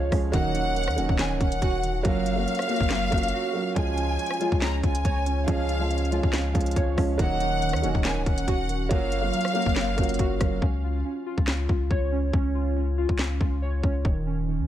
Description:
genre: hip hop, trap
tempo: 140 BPM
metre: 4/4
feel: half-time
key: Db major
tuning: A4 = 440 Hz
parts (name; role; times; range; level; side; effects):
- dark concert grand piano; accompaniment; 0.0-10.6 s; F3 to Ab4; -30 LUFS; right 5 dB; low-pass filter
- warbly lo-fi synth keys; arpeggios; 0.0-14.7 s; Eb3 to Db5; -30 LUFS; right 2 dB; chorus, low-pass filter, tape echo
- long sustained 808-style bass; bass; 0.0-14.7 s; Db1 to Eb2; -28 LUFS; left 1 dB; none
- trap drum kit; drums; 0.1-14.2 s; handclaps, hi-hat, kick drum, rim click, snare drum; -26 LUFS; left 1 dB; vintage 12-bit sampler grit
- warm studio violin section; second line; 0.3-10.6 s; F5 to Bb5; -30 LUFS; left 2 dB; tape echo
room: little or no reverb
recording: none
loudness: -22 LUFS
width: side -12 dB against mid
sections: 0.0-10.6 A section; 10.6-14.7 B section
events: break 3.3-3.8; hi-hats muted 10.6-14.7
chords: 0.3 Ebm7; 2.0 Gbmaj7; 3.8 Db; 7.2 Ebm7; 8.9 Gbmaj7; 10.6 Db; 14.0 Eb7(no3)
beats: | 0.33 0.76 1.19 1.62 | 2.05 2.48 2.91 3.33 | 3.76 4.19 4.62 5.05 | 5.48 5.91 6.33 6.76 | 7.19 7.62 8.05 8.48 | 8.91 9.33 9.76 10.19 | 10.62 11.05 11.48 11.91 | 12.33 12.76 13.19 13.62 | 14.05 14.48

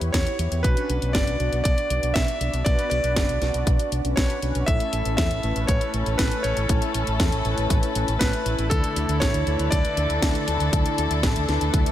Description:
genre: italo disco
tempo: 119 BPM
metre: 4/4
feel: straight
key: D major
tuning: A4 = 440 Hz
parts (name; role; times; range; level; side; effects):
- mellow synth brass; stabs; 0.0-11.9 s; A3 to D5; -30 LUFS; left 2 dB; chorus, tape echo, shimmer reverb
- fingered electric bass with an envelope filter; bass; 0.0-11.8 s; F#1 to E2; -26 LUFS; equal; none
- house drum kit; drums; 0.0-11.9 s; hi-hat, snare drum; -28 LUFS; equal; none
- bright electric grand piano; melody; 0.1-11.9 s; A4 to E5; -28 LUFS; right 1 dB; ping-pong delay, shimmer reverb
- electronic kick drum; drums; 0.1-11.8 s; none; -23 LUFS; equal; none
- warm chamber string section; sustained chords; 4.7-11.9 s; D3 to A4; -28 LUFS; left 2 dB; shimmer reverb
- swell; sound effects; 11.8-11.9 s; none; -34 LUFS; right 7 dB; none
room: light reverb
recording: none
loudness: -20 LUFS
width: side -12 dB against mid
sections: 0.0-11.9 A section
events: swell 11.8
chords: 0.0 Em; 0.6 Bmadd9; 4.7 A; 8.7 Dsus2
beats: 0.14 | 0.64 1.15 1.65 2.16 | 2.66 3.17 3.67 4.17 | 4.68 5.18 5.69 6.19 | 6.70 7.20 7.70 8.21 | 8.71 9.22 9.72 10.22 | 10.73 11.23 11.74

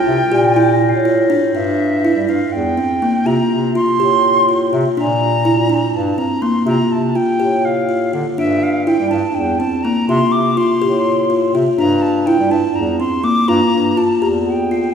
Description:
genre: contemporary instrumental, chamber music in an uneven meter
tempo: 246 BPM (eighths)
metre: 7/8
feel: straight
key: G dorian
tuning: A4 = 441 Hz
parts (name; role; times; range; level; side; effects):
- bright silver concert flute; melody; 0.0-14.9 s; E5 to D6; -20 LUFS; equal; none
- buzzing kalimba; arpeggios; 0.0-14.9 s; Bb3 to G4; -16 LUFS; right 1 dB; none
- warm bass clarinet; bass; 0.1-14.9 s; E2 to G3; -19 LUFS; left 2 dB; none
- crotales; texture; 0.6-1.5, 8.4-14.9 s; G6 to F7; -32 LUFS; left 2 dB; none
room: wet scoring stage reverb, RT60 1.7 s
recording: heard from further back in the room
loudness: -13 LUFS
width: side -7 dB against mid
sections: 0.0-1.5 A section; 1.5-14.9 B section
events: none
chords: 0.0 C7sus4; 1.5 G5; 3.3 Csus4; 5.0 Bb; 6.7 Csus4; 8.4 G5; 10.1 Csus4; 11.8 Gm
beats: 0.07 0.32 0.56 0.81 1.05 1.30 | 1.55 1.79 2.04 2.28 2.53 2.77 3.02 | 3.26 3.51 3.75 4.00 4.24 4.48 4.73 | 4.97 5.21 5.45 5.69 5.93 6.18 6.42 | 6.66 6.91 7.15 7.39 7.64 7.89 8.13 | 8.38 8.62 8.87 9.11 9.35 9.60 9.84 | 10.08 10.33 10.57 10.81 11.05 11.30 11.54 | 11.78 12.03 12.27 12.51 12.75 13.00 13.24 | 13.48 13.73 13.97 14.22 14.47 14.71

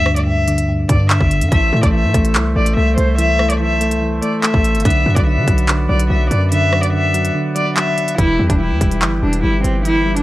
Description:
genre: hip hop, drill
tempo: 144 BPM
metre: 4/4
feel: half-time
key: E minor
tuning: A4 = 441 Hz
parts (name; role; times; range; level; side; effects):
- dark cello; melody; 0.0-10.2 s; C4 to E5; -19 LUFS; left 1 dB; tape echo
- soft electric-piano-like synth keys; accompaniment; 0.0-10.2 s; G2 to A3; -20 LUFS; equal; chorus
- hard-hitting 808-style bass; bass; 0.0-10.2 s; E1 to D3; -17 LUFS; equal; none
- drill drum kit; drums; 0.1-10.2 s; handclaps, hi-hat, kick drum, rim click; -18 LUFS; equal; none
- chamber organ, soft reed; sustained chords; 1.5-10.2 s; A3 to G5; -28 LUFS; right 1 dB; none
room: little or no reverb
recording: dry, gritty hardware recording, cassette tape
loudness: -13 LUFS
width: side -16 dB against mid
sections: 0.0-8.2 A section; 8.2-10.2 B section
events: break 7.4-8.2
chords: 0.0 G5; 1.5 Am; 4.9 Bm; 8.2 Em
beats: 0.27 0.69 1.10 | 1.52 1.94 2.35 2.77 | 3.19 3.60 4.02 4.43 | 4.85 5.27 5.68 6.10 | 6.52 6.93 7.35 7.77 | 8.19 8.60 9.02 9.44 | 9.85

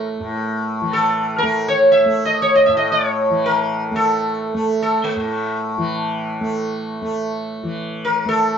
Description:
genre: indian classical, Hindustani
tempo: free time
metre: none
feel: none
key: A major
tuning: A4 = 440 Hz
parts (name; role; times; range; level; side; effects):
- sitar; melody; 0.0-8.6 s; A3 to E5; -16 LUFS; equal; none
- tanpura; drone; 0.0-8.6 s; A2 to A3; -22 LUFS; right 1 dB; none
room: moderate studio reverb, RT60 0.6 s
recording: dark, warm production, nothing above 7.6 kHz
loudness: -16 LUFS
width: side -7 dB against mid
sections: 0.0-7.6 A section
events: none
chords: none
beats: free time

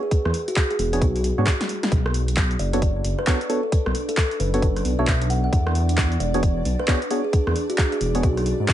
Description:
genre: UK garage, two-step garage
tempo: 133 BPM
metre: 4/4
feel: swing 62% on 16ths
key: unclear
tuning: A4 = 441 Hz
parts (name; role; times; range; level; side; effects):
- kalimba; melody; 0.0-8.4 s; F#4 to F#5; -27 LUFS; equal; digital delay
- electronic kick drum; drums; 0.1-8.7 s; none; -20 LUFS; equal; none
- punchy analog drum machine; drums; 0.1-8.7 s; handclaps, hi-hat, rim click, snare drum; -27 LUFS; equal; overdrive
- dark detuned saw bass; bass; 0.3-8.7 s; E1 to G#2; -23 LUFS; equal; none
- percussive organ stab; stabs; 0.9-8.3 s; B3 to C#5; -28 LUFS; right 1 dB; chorus, digital delay
- ethereal airy pad; sustained chords; 2.5-8.7 s; D4 to D5; -33 LUFS; right 3 dB; ensemble chorus, built-in reverb, phaser, sidechain pumping
room: digital ambience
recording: nothing above 11.0 kHz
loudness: -19 LUFS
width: side -12 dB against mid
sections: 0.0-8.7 A section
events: drum fill 1.6-1.9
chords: 0.0 E13; 1.9 Bm9; 5.5 E13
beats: | 0.11 0.56 1.01 1.47 | 1.92 2.37 2.82 3.27 | 3.72 4.17 4.62 5.08 | 5.53 5.98 6.43 6.88 | 7.33 7.78 8.23 8.69

